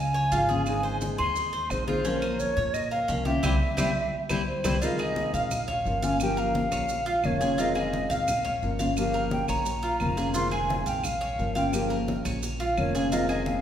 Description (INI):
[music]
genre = latin, Cuban son and guajira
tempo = 174 BPM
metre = 4/4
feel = straight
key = F minor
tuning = A4 = 440 Hz
[part]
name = mellow hollow silver concert flute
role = melody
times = 0.0-13.6 s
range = C5 to C6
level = -29 LUFS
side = right 1 dB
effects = none
[part]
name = Cuban tres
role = arpeggios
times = 0.0-13.6 s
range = Db4 to F5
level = -32 LUFS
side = right 1 dB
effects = none
[part]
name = upright bass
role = bass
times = 0.0-13.6 s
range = F1 to Bb2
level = -32 LUFS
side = equal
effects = none
[part]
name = maracas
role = percussion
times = 0.1-13.6 s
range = none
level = -41 LUFS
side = right 5 dB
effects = none
[part]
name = congas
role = percussion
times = 0.2-13.6 s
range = none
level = -35 LUFS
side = left 2 dB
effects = none
[part]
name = nylon-string guitar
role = accompaniment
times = 0.3-13.6 s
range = C3 to Ab4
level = -30 LUFS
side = left 2 dB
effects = none
[part]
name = claves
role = percussion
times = 0.7-13.5 s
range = none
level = -41 LUFS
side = right 1 dB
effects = none
[sound]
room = wet recital hall reverb, RT60 1.7 s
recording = recorded in a church or concert hall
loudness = -24 LUFS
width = side -9 dB against mid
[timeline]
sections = 0.0-4.8 A section; 4.8-13.6 B section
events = band accent 3.4-4.8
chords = 0.0 Db; 0.7 Ab; 2.1 Bbm; 3.4 C; 4.8 Fm7; 5.5 Gm7b5; 6.9 Bbm; 7.6 Fm7; 8.3 Gm7b5; 9.7 Bbm; 10.4 Fm7; 11.0 Gm7b5; 12.4 Bbm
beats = 0.32 | 0.67 1.01 1.36 1.71 | 2.05 2.40 2.75 3.09 | 3.44 3.78 4.13 4.47 | 4.82 5.17 5.51 5.86 | 6.20 6.55 6.89 7.24 | 7.59 7.93 8.28 8.62 | 8.97 9.31 9.66 10.01 | 10.35 10.70 11.04 11.39 | 11.73 12.08 12.43 12.77 | 13.12 13.46